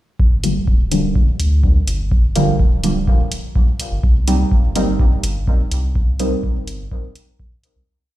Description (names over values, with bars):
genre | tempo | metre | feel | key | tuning
dub techno | 125 BPM | 4/4 | straight | G minor | A4 = 438 Hz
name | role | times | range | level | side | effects
pure sine sub bass | bass | 0.2-7.8 s | D1 to D2 | -20 LUFS | equal | sidechain pumping
electronic kick drum | drums | 0.2-7.5 s | none | -15 LUFS | equal | none
deep mellow chord stab | stabs | 0.4-6.3 s | D3 to Eb4 | -20 LUFS | right 1 dB | chorus, phaser, sidechain pumping, dub echo
electronic hi-hat | drums | 0.4-7.7 s | none | -28 LUFS | right 1 dB | none
room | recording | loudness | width
light reverb, digital ambience | played on a big sound system in a bare room, large studio reverb | -14 LUFS | side -15 dB against mid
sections
0.2-7.9 groove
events
fade-out 5.3-7.9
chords
0.2 Gm7; 4.0 Cm7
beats
| 0.20 0.68 1.16 1.64 | 2.12 2.60 3.08 3.56 | 4.04 4.51 5.00 5.47 | 5.96 6.43 6.92 7.39